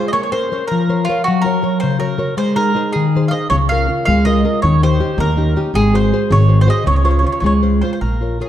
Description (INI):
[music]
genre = italian folk, Italian serenade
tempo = 107 BPM (dotted quarters)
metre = 6/8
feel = rubato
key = Db major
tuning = A4 = 438 Hz
[part]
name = mandolin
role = melody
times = 0.0-8.5 s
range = F4 to F5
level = -19 LUFS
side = right 1 dB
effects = none
[part]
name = nylon-string guitar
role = accompaniment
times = 0.0-8.5 s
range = Db3 to Db5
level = -16 LUFS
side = left 2 dB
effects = none
[part]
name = upright bass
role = bass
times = 3.5-8.4 s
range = Ab1 to Eb2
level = -15 LUFS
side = right 1 dB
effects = none
[sound]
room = wet recital hall reverb, RT60 1.7 s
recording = dark, warm production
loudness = -13 LUFS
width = side -11 dB against mid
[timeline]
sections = 0.0-8.0 A section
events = none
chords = 0.1 Bbmadd9; 1.3 Gb; 2.4 Ab; 3.5 Db6; 4.6 Eb7; 5.7 Ab7; 6.9 Dbmaj7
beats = | 0.13 0.69 | 1.25 1.81 | 2.37 2.93 | 3.50 4.07 | 4.63 5.18 | 5.74 6.30 | 6.86 7.43 | 8.02